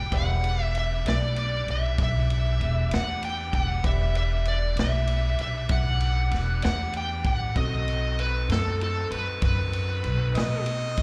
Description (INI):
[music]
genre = slow blues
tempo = 64 BPM (dotted quarters)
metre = 12/8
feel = straight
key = E minor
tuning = A4 = 440 Hz
[part]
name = smooth overdriven lead guitar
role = melody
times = 0.0-10.6 s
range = A4 to G5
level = -32 LUFS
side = equal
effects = slapback echo
[part]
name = bright baby grand piano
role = accompaniment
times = 0.0-11.0 s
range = C4 to E5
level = -43 LUFS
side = equal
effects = slapback echo
[part]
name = overdriven tonewheel organ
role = sustained chords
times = 0.0-11.0 s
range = D#3 to B4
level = -42 LUFS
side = equal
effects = slow rotary speaker
[part]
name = upright bass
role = bass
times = 0.0-11.0 s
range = E1 to B2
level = -28 LUFS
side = equal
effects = none
[part]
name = vintage drum kit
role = drums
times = 0.1-11.0 s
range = kick drum, ride cymbal, snare drum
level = -33 LUFS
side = equal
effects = none
[part]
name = warm harmonica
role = second line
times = 10.4-11.0 s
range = D#5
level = -33 LUFS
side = equal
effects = slapback echo
[sound]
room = studio reverb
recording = live gig heard through the venue's PA, club reverb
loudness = -26 LUFS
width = mono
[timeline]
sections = 0.0-11.0 A section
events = none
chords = 0.0 Em9; 7.6 B7b9